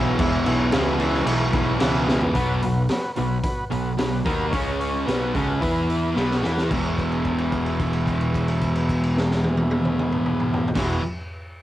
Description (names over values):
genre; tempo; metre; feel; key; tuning
garage rock duo or trio; 110 BPM; 4/4; straight; E major; A4 = 439 Hz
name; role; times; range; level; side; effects
combo organ; sustained chords; 0.0-11.0 s; B3 to C#5; -30 LUFS; equal; cassette tape
fuzz guitar; riff; 0.0-11.0 s; E2 to E4; -22 LUFS; equal; distortion, cassette tape
growling picked electric bass; bass; 0.0-11.0 s; E1 to E2; -28 LUFS; equal; overdrive
raw garage drum kit; drums; 0.2-10.9 s; crash cymbal, hi-hat, kick drum, snare drum, toms; -27 LUFS; equal; cassette tape
room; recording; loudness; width
light reverb, small room ambience; home recording on cassette; -20 LUFS; side -14 dB against mid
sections
0.0-2.4 A section; 2.4-6.7 B section; 6.7-11.1 C section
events
drum fill 2.1, 6.2-6.7; held note 6.7-10.8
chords
0.0 E; 2.4 B5; 4.5 C#5; 5.1 B5; 5.6 E5; 6.2 B5; 6.7 E